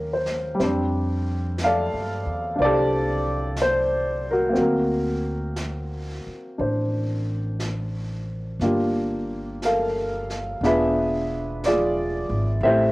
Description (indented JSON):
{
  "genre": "jazz ballad",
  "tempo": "60 BPM",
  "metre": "4/4",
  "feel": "swing 68% on 8ths",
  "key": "unclear",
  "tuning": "A4 = 439 Hz",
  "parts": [
    { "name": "warm baby grand piano", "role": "accompaniment", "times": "0.0-12.9 s", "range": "G3 to F5", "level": "-22 LUFS", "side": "equal", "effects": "cassette tape" },
    { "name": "upright bass", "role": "bass", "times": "0.0-12.9 s", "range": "E1 to G2", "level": "-28 LUFS", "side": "equal", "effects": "none" },
    { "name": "jazz brush drum kit", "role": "drums", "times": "0.3-12.9 s", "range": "brushed snare drum, hi-hat, snare drum", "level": "-38 LUFS", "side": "equal", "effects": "cassette tape" }
  ],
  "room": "moderate studio reverb, RT60 0.5 s",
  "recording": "home recording on cassette",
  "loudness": "-21 LUFS",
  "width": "side -20 dB against mid",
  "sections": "0.0-12.9 A section",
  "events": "none",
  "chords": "0.0 Eb9; 0.6 F69; 4.6 D7b13; 8.6 Gm9; 10.6 E7b9"
}